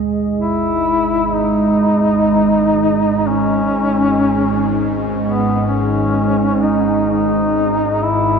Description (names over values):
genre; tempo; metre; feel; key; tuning
dark ambient drone; free time; none; none; G# minor; A4 = 440 Hz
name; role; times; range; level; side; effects
deep dark ambient pad; sustained chords; 0.0-8.4 s; G#3 to D#5; -18 LUFS; right 3 dB; chorus, built-in reverb
gamelan-type bossed gongs; arpeggios; 0.0-5.2 s; D#2 to G#3; -38 LUFS; left 2 dB; none
bowed-like drone; drone; 0.5-8.4 s; G#1 to G#2; -20 LUFS; equal; built-in reverb, phaser
bronze singing bowl; texture; 0.0-8.4 s; none; barely audible; none; none
mellow duduk; melody; 0.4-8.4 s; B3 to E4; -17 LUFS; left 2 dB; ping-pong delay
room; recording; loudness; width
wet cathedral reverb, RT60 5.5 s; dark, warm production; -13 LUFS; side -6 dB against mid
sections
0.0-8.4 A section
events
none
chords
0.0 G#m